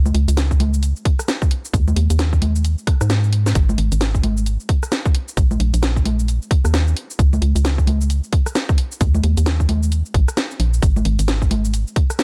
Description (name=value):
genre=UK garage, two-step garage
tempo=132 BPM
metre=4/4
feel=swing 61% on 16ths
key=unclear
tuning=A4 = 440 Hz
part: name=organ-like FM bass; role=bass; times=0.0-11.8 s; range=G#1 to G#2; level=-19 LUFS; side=equal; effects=none
part: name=garage drum kit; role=drums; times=0.1-12.2 s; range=cabasa, congas, hi-hat, rim click, snare drum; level=-25 LUFS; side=equal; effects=none
part: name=electronic kick drum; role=drums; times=0.5-12.1 s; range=none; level=-19 LUFS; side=equal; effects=none
room=digital ambience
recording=none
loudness=-18 LUFS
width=mono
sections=0.0-12.2 A section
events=drum fill 3.1-3.6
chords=none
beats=0.37 0.83 1.28 | 1.74 2.19 2.65 3.10 | 3.55 4.01 4.46 4.92 | 5.37 5.83 6.28 6.74 | 7.19 7.64 8.10 8.55 | 9.01 9.46 9.92 10.37 | 10.83 11.28 11.74 12.19